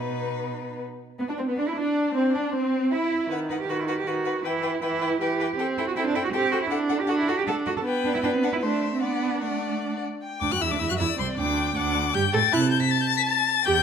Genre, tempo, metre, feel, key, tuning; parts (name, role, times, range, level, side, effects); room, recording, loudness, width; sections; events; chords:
quick classical-period movement for string quartet; 157 BPM; 3/4; straight; E minor, G major from 5.6 s; A4 = 440 Hz
warm violin; melody; 0.0-13.8 s; B3 to B6; -28 LUFS; left 11 dB
warm violin; second line; 0.0-13.8 s; B3 to A5; -32 LUFS; left 4 dB
warm viola; accompaniment; 0.0-13.8 s; D#3 to A4; -28 LUFS; right 2 dB
warm cello; bass; 0.0-13.8 s; C2 to A4; -27 LUFS; right 4 dB
wet recital hall reverb, RT60 1.5 s; -22 LUFS; side -7 dB against mid
0.0-1.0 A section; 1.0-10.2 A section; 10.2-13.8 B section
0.0 B; 1.0 E5; 2.2 Cadd9; 3.3 B/D#; 4.5 Em; 5.6 Am7/C; 6.7 D; 7.9 G/B; 8.6 Am; 9.0 D; 10.2 G5; 11.4 G5/D; 12.5 C